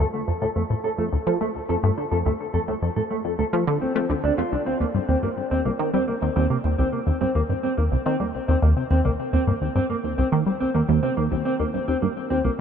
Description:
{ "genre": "ambient, sequencer-driven space music", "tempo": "106 BPM", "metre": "4/4", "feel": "straight", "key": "C dorian", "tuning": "A4 = 440 Hz", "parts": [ { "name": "mellow electric guitar", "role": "arpeggios", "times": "0.0-12.5 s", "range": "A3 to A4", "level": "-25 LUFS", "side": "equal", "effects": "auto-pan, low-pass filter, ping-pong delay" }, { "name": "tight sequenced synth", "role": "riff", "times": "0.0-12.5 s", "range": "C2 to A3", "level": "-23 LUFS", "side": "equal", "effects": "chorus, phaser, ping-pong delay" } ], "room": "moderate huge ambient reverb, RT60 8.6 s", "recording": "none", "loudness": "-21 LUFS", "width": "side -8 dB against mid", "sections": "0.0-12.6 A section", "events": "none", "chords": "0.0 Dm; 4.5 Cm7" }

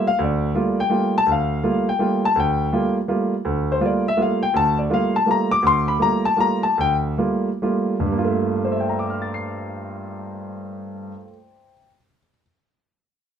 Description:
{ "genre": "jazz", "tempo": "116-165 BPM", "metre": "3/4", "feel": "swing 64% on 8ths", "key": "G dorian", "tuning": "A4 = 440 Hz", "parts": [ { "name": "warm grand piano", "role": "solo", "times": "0.0-12.4 s", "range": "D2 to C7", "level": "-19 LUFS", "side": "equal", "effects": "none" } ], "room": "moderate studio ambience, RT60 0.5 s", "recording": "dark, warm production", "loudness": "-18 LUFS", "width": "side -8 dB against mid", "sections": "0.0-8.1 A section; 8.1-11.2 B section", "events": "slowing down 5.6-8.1", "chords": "0.0 Gm9" }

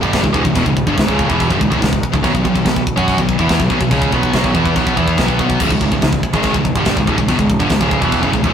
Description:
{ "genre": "heavy metal", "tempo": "143 BPM", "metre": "4/4", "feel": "straight", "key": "C# minor", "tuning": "A4 = 440 Hz", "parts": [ { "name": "heavy high-gain guitar", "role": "riff", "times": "0.0-8.5 s", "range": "C#2 to F#4", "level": "-18 LUFS", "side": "right 5 dB", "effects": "distortion" }, { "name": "scooped high-gain guitar", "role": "riff", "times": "0.0-8.5 s", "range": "C#2 to F#4", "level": "-18 LUFS", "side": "left 6 dB", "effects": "distortion" }, { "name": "fuzz picked electric bass", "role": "bass", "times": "0.0-8.5 s", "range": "C#1 to F#2", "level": "-20 LUFS", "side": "equal", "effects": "overdrive" }, { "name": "tight metal drum kit", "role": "drums", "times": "0.0-8.5 s", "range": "china cymbal, crash cymbal, kick drum, snare drum", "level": "-18 LUFS", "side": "equal", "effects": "none" } ], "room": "moderate studio reverb, RT60 0.6 s", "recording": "rough rehearsal-room recording", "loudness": "-13 LUFS", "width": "side -8 dB against mid", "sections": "0.0-8.5 A section", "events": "none", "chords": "0.0 C#m; 2.2 B5; 5.6 C#m" }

